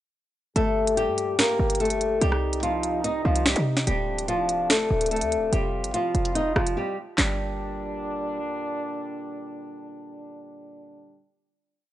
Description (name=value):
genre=hip hop, drill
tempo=145 BPM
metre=4/4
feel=half-time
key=G minor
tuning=A4 = 440 Hz
part: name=flamenco guitar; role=melody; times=0.6-8.4 s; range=F3 to Eb5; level=-25 LUFS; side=left 1 dB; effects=none
part: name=warm brass ensemble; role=sustained chords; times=0.6-11.3 s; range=Bb2 to G4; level=-32 LUFS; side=left 1 dB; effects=stereo widening
part: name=short 808-style bass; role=bass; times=0.6-8.8 s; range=D1 to C3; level=-28 LUFS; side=equal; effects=none
part: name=drill drum kit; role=drums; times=0.6-7.3 s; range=finger snaps, handclaps, hi-hat, rim click, snare drum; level=-25 LUFS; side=right 1 dB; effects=none
room=studio reverb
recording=dry, gritty hardware recording, cassette tape, nothing above 10.8 kHz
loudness=-22 LUFS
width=side -13 dB against mid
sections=0.6-7.2 hook; 7.2-10.5 final chord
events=break 6.8-7.2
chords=0.6 Gm; 2.2 Cm; 3.9 Dm7; 5.5 Fsus2; 7.2 Gm